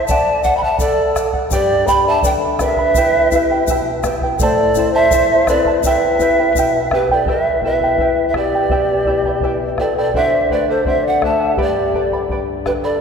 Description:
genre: andean folk, Andean ensemble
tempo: 83 BPM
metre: 2/4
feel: straight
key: E minor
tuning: A4 = 440 Hz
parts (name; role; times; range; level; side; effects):
- pan flute; melody; 0.0-13.0 s; B4 to B5; -17 LUFS; right 3 dB; none
- mellow large quena; second line; 0.0-13.0 s; G4 to G5; -20 LUFS; left 4 dB; none
- charango; accompaniment; 0.0-13.0 s; E4 to B5; -22 LUFS; right 2 dB; none
- bombo; percussion; 0.1-12.8 s; none; -24 LUFS; equal; none
- egg shaker; percussion; 0.1-6.7 s; none; -32 LUFS; left 8 dB; none
- flamenco guitar; accompaniment; 1.5-13.0 s; E2 to G5; -22 LUFS; left 5 dB; none
room: wet church reverb, RT60 3.0 s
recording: recorded in a church or concert hall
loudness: -13 LUFS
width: side -6 dB against mid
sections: 0.0-7.3 A section; 7.3-13.0 B section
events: nylon-string guitar fill 3.3-4.4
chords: 0.1 D; 1.5 G; 3.0 Em; 4.4 Am; 5.8 Em; 10.1 D7; 11.6 G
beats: | 0.08 0.80 | 1.51 2.23 | 2.95 3.67 | 4.39 5.11 | 5.83 6.55 | 7.27 7.99 | 8.71 9.43 | 10.15 10.87 | 11.58 12.30

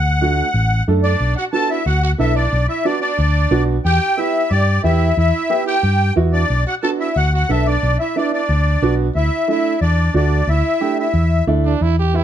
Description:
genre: latin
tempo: 181 BPM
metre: 4/4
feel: straight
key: unclear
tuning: A4 = 440 Hz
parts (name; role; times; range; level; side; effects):
- musette accordion; melody; 0.0-11.4 s; D5 to A5; -20 LUFS; left 2 dB; none
- hollow-body short-scale picked electric bass; bass; 0.0-12.2 s; A1 to G2; -16 LUFS; left 1 dB; none
- warm upright piano; accompaniment; 0.2-12.2 s; A3 to A4; -20 LUFS; right 5 dB; none
- growling trumpet; second line; 1.0-12.2 s; D4 to A4; -24 LUFS; right 6 dB; none
room: light reverb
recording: dark, warm production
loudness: -14 LUFS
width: side -10 dB against mid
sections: 0.0-1.2 A section; 1.2-11.8 B section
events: none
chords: 0.0 D; 1.2 Bm; 3.8 Em; 6.5 Bm; 9.2 Dsus2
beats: 0.21 0.54 0.87 | 1.20 1.53 1.86 2.19 | 2.52 2.85 3.19 3.52 | 3.85 4.18 4.51 4.84 | 5.17 5.50 5.84 6.17 | 6.50 6.83 7.16 7.49 | 7.83 8.16 8.49 8.82 | 9.15 9.48 9.81 10.14 | 10.48 10.81 11.14 11.47 | 11.81 12.14

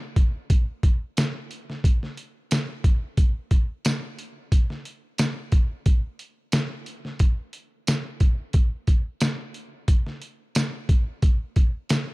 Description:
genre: blues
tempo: 89 BPM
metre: 4/4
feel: straight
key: none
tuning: none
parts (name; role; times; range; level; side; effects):
- trip hop sampler-style drum kit; drums; 0.2-12.1 s; hi-hat, kick drum, snare drum, tambourine; -21 LUFS; equal; none
room: little or no reverb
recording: dry, close 1970s-style studio recording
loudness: -22 LUFS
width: side -24 dB against mid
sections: 0.0-12.1 A section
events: none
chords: none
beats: | 0.49 1.17 1.84 2.51 | 3.18 3.85 4.52 5.19 | 5.86 6.53 7.20 7.88 | 8.55 9.22 9.89 10.56 | 11.23 11.90

